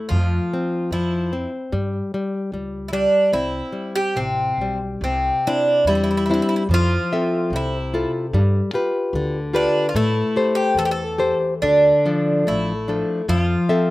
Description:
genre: fado-style ballad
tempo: 74 BPM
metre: 2/4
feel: rubato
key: C major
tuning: A4 = 440 Hz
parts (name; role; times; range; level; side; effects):
- Irish bouzouki; melody; 0.0-13.9 s; C4 to A4; -21 LUFS; right 1 dB; none
- nylon-string guitar; accompaniment; 0.0-13.9 s; C3 to E5; -21 LUFS; left 2 dB; none
- upright bass; bass; 0.1-13.5 s; A1 to A2; -24 LUFS; equal; none
room: little or no reverb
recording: recorded outdoors, with no room sound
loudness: -18 LUFS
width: side -18 dB against mid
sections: 0.0-5.0 A section; 5.0-13.9 A section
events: none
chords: 0.1 F5; 1.7 C#(b5, no3); 3.3 C5; 5.0 Cadd9; 6.7 Fmaj7; 8.3 G7; 9.9 Am7; 11.6 Dm; 13.3 Fmaj7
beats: | 0.10 0.92 | 1.73 2.53 | 3.33 4.16 | 5.03 5.87 | 6.70 7.52 | 8.33 9.14 | 9.94 10.76 | 11.62 12.47 | 13.29

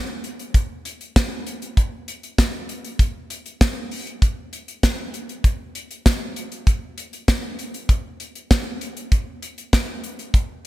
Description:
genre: pop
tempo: 98 BPM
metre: 4/4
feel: straight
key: none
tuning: none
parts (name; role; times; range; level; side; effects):
- modern studio drum kit; drums; 0.2-10.5 s; hi-hat, kick drum, snare drum; -19 LUFS; equal; none
room: light reverb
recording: bright 1980s-style digital production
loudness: -20 LUFS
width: side -17 dB against mid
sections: 0.0-10.7 A section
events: none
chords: none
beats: 0.55 1.16 | 1.77 2.38 3.00 3.61 | 4.22 4.83 5.45 6.06 | 6.67 7.28 7.89 8.51 | 9.12 9.73 10.34

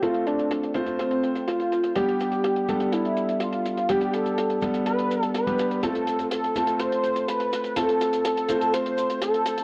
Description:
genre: italo disco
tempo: 124 BPM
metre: 4/4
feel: straight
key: unclear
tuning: A4 = 440 Hz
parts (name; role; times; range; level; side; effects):
- unison lead; melody; 0.0-9.6 s; C4 to C5; -27 LUFS; equal; lush chorus, tape echo
- warm grand piano; stabs; 0.0-9.6 s; G3 to C5; -29 LUFS; equal; low-pass filter
- cabasa and hi-hat; drums; 0.0-9.6 s; none; -36 LUFS; equal; low-pass filter on hats, studio ambience, low-pass filter on cymbals, low-pass filter on perc, low-pass filter on snare, low-pass filter on room
room: small room ambience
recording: dry, close 1970s-style studio recording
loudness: -25 LUFS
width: mono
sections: 0.0-9.6 A section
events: none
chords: 0.0 F; 2.0 G; 5.8 F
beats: | 0.02 0.51 0.99 1.48 | 1.96 2.44 2.93 3.41 | 3.90 4.38 4.86 5.35 | 5.83 6.31 6.80 7.28 | 7.77 8.25 8.73 9.22

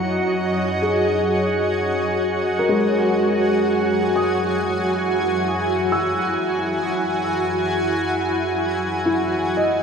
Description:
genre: ambient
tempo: free time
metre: none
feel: none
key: F# mixolydian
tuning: A4 = 440 Hz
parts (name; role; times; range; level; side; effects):
- granular cloud pad; sustained chords; 0.0-9.8 s; E4 to C#6; -20 LUFS; equal; built-in reverb
- felt-muted upright piano; arpeggios; 0.0-9.8 s; G#3 to E6; -24 LUFS; left 1 dB; tape echo
- warm symphonic cello section; bass; 0.0-9.8 s; F#2; -33 LUFS; equal; none
- organ-like drone; drone; 0.0-9.8 s; F#3 to F#4; -31 LUFS; right 1 dB; none
- drifting glass-harmonics texture; texture; 0.0-9.8 s; F#5; -32 LUFS; right 5 dB; chorus, built-in reverb
room: wet cathedral reverb, RT60 6.5 s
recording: dark, warm production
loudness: -18 LUFS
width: side -6 dB against mid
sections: 0.0-9.8 A section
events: fade-out on cello section 0.0-9.8; fade-out on synth texture 0.0-9.8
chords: 0.0 F#7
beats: free time

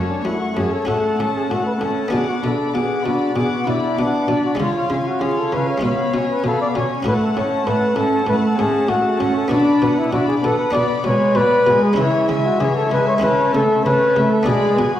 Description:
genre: classical, baroque-style concerto movement with solo episodes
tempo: 97 BPM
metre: 4/4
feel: straight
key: F# minor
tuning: A4 = 436 Hz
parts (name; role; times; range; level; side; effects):
- dark trumpet; melody; 0.0-15.0 s; C#4 to D5; -19 LUFS; left 1 dB; none
- rich chamber violin section; melody; 0.0-15.0 s; E5 to D6; -30 LUFS; left 5 dB; none
- warm chamber violin section; second line; 0.0-15.0 s; A4 to A5; -26 LUFS; left 3 dB; none
- buff-stop harpsichord; accompaniment; 0.0-15.0 s; F#2 to G#4; -25 LUFS; equal; none
- dark chamber viola section; accompaniment; 0.0-15.0 s; E3 to E#4; -21 LUFS; right 1 dB; none
- warm chamber cello section; bass; 0.0-14.9 s; F#2 to C#3; -27 LUFS; equal; none
room: wet recital hall reverb, RT60 1.5 s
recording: heard from further back in the room, vinyl crackle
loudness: -16 LUFS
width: side -11 dB against mid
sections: 0.0-15.0 A section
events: none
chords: 0.0 F#m; 0.9 F#m/A; 2.1 Bm; 4.6 C#; 5.8 C#7/B; 7.1 F#m/A; 9.5 Bm; 10.8 G#dim/B; 12.0 C#m; 13.2 A/C#; 14.5 G#dim/B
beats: 0.24 0.87 1.50 | 2.12 2.74 3.36 3.98 | 4.60 5.22 5.83 6.45 | 7.06 7.67 8.28 8.89 | 9.51 10.13 10.75 11.37 | 11.99 12.61 13.23 13.85 | 14.47

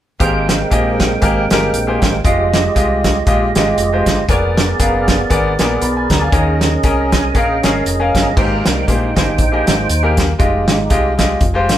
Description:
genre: uptempo gospel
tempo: 118 BPM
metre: 4/4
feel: swing 57% on 8ths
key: Ab major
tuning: A4 = 440 Hz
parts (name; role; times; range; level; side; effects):
- bright grand piano; accompaniment; 0.2-11.8 s; Ab2 to D6; -18 LUFS; left 2 dB; none
- percussive tonewheel organ; sustained chords; 0.2-11.2 s; G3 to Ab5; -18 LUFS; right 3 dB; slow rotary speaker, chorus vibrato
- fingered electric bass; bass; 0.2-11.8 s; F1 to Eb2; -19 LUFS; equal; none
- warm soul drum kit; drums; 0.2-11.8 s; crash cymbal, hi-hat, kick drum, snare drum; -16 LUFS; equal; none
room: wet studio reverb, RT60 0.6 s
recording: band playing live in one room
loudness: -12 LUFS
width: side -11 dB against mid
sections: 0.2-8.4 A section; 8.4-11.8 B section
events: tonewheel organ fill 6.8-8.4; tonewheel organ solo 8.4-11.8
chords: 0.2 Abmaj9; 2.2 Fm9; 4.3 Bb7b9/F; 6.3 Eb7sus4; 8.4 Abmaj9; 10.4 Fm9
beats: | 0.20 0.71 1.22 1.73 | 2.25 2.75 3.27 3.78 | 4.29 4.80 5.31 5.82 | 6.33 6.84 7.35 7.86 | 8.37 8.87 9.38 9.89 | 10.40 10.90 11.41

